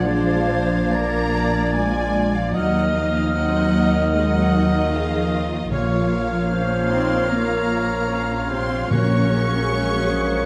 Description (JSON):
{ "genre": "cinematic", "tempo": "76 BPM", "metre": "4/4", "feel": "rubato", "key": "Bb minor", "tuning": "A4 = 441 Hz", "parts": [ { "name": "warm studio violin section", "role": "melody", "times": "0.0-10.5 s", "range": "Bb4 to F5", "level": "-33 LUFS", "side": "equal", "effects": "none" }, { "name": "silver concert flute", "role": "second line", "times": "0.0-10.5 s", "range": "F6 to Ab6", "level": "-31 LUFS", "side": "equal", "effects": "none" }, { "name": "warm oboe", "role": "second line", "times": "0.0-10.5 s", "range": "Db5 to Eb5", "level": "-34 LUFS", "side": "equal", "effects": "none" }, { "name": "warm symphonic violin section", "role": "second line", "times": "0.0-10.5 s", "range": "F5 to Db6", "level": "-32 LUFS", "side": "equal", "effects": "none" }, { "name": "warm symphonic viola section", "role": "accompaniment", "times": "0.0-10.5 s", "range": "C3 to Ab4", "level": "-30 LUFS", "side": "equal", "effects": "none" }, { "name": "clear French horn section", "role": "sustained chords", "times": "0.0-10.5 s", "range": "Eb3 to Eb4", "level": "-29 LUFS", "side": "equal", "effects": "none" }, { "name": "rich symphonic double bass section", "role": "bass", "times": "0.0-10.5 s", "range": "Bb1 to Eb2", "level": "-27 LUFS", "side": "equal", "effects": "none" }, { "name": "warm studio cello section", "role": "bass", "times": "0.0-10.5 s", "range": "F3 to Db4", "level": "-27 LUFS", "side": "equal", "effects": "none" }, { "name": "timpani", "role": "percussion", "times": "0.0-0.5, 5.7-10.1 s", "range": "Bb2", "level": "-28 LUFS", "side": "equal", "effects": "none" }, { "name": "warm clarinet", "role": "second line", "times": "0.1-10.5 s", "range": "Gb4 to Eb5", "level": "-31 LUFS", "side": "equal", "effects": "none" } ], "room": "wet recital hall reverb, RT60 1.5 s", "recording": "dark, warm production", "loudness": "-20 LUFS", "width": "mono", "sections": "0.0-10.5 A section", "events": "none", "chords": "0.0 Bb7; 2.5 Ebmadd9; 5.7 Bbm; 8.9 Gb/Bb" }